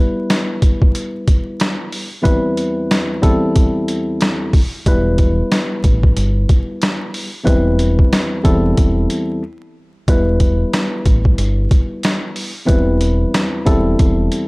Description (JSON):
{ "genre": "hip hop, boom-bap hip-hop", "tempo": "92 BPM", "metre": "4/4", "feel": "swing 61% on 16ths", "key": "E minor", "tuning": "A4 = 440 Hz", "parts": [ { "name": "mellow tine electric piano", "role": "accompaniment", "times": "0.0-14.5 s", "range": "E2 to B4", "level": "-18 LUFS", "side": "equal", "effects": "cassette tape, high-pass filter, low-pass filter" }, { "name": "boom bap sampler-style drum kit", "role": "drums", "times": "0.3-14.5 s", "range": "hi-hat, kick drum, snare drum", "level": "-15 LUFS", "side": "equal", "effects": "none" }, { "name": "deep dub fingered electric bass", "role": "bass", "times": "4.9-14.3 s", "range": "E1 to A1", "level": "-17 LUFS", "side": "equal", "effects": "none" } ], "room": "digital ambience", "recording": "dry, gritty hardware recording, vinyl crackle", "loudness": "-13 LUFS", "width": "side -26 dB against mid", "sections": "0.0-10.1 A section; 10.1-14.5 A section", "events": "break 0.0-4.9, 9.4-10.1", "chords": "0.0 Em; 2.3 Cmaj7/E; 3.2 Am7/E; 4.9 Em; 7.5 Cmaj7/E; 8.4 Am7/E; 10.1 Em; 12.7 Cmaj7/E; 13.7 Am7/E" }